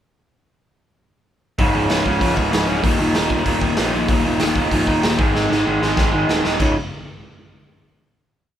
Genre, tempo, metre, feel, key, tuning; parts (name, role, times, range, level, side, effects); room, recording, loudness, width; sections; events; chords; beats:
punk rock; 192 BPM; 4/4; straight; A4 = 440 Hz
raw garage guitar; riff; 1.6-6.7 s; Db2 to Ab3; -18 LUFS; equal; overdrive
fuzz picked electric bass; bass; 1.6-6.7 s; Db1 to Bb1; -25 LUFS; equal; overdrive
raw garage drum kit; drums; 1.6-6.7 s; crash cymbal, hi-hat, kick drum, snare drum; -21 LUFS; equal
light reverb; band playing live in one room; -16 LUFS; side -10 dB against mid
1.6-6.6 verse; 6.6-7.8 final chord
drum fill 5.3-6.6
1.6 Db5; 2.8 Eb5; 5.2 Ab5; 6.6 Db5
| 1.58 1.90 2.21 2.52 | 2.84 3.15 3.46 3.78 | 4.09 4.40 4.72 5.03 | 5.34 5.66 5.97 6.28 | 6.59